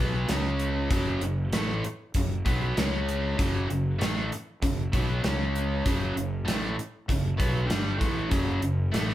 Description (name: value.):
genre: hard rock.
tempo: 97 BPM.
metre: 4/4.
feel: straight.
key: F# minor.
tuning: A4 = 439 Hz.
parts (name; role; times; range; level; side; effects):
biting overdriven guitar; riff; 0.0-9.1 s; F#2 to C#4; -29 LUFS; equal; none.
fuzz fingered electric bass; bass; 0.0-9.1 s; F#1 to C#2; -30 LUFS; equal; overdrive.
gated 80s drum kit; drums; 0.3-9.1 s; hi-hat, kick drum, snare drum; -28 LUFS; equal; none.
room: light reverb.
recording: band playing live in one room.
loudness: -25 LUFS.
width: side -13 dB against mid.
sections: 0.0-9.1 A section.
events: none.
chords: 0.3 C#5; 0.9 F#m; 2.8 C#5; 3.4 F#m; 5.2 C#5; 5.8 F#m.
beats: 0.29 | 0.91 1.52 2.14 2.76 | 3.38 3.99 4.61 5.23 | 5.84 6.46 7.08 7.69 | 8.30 8.92.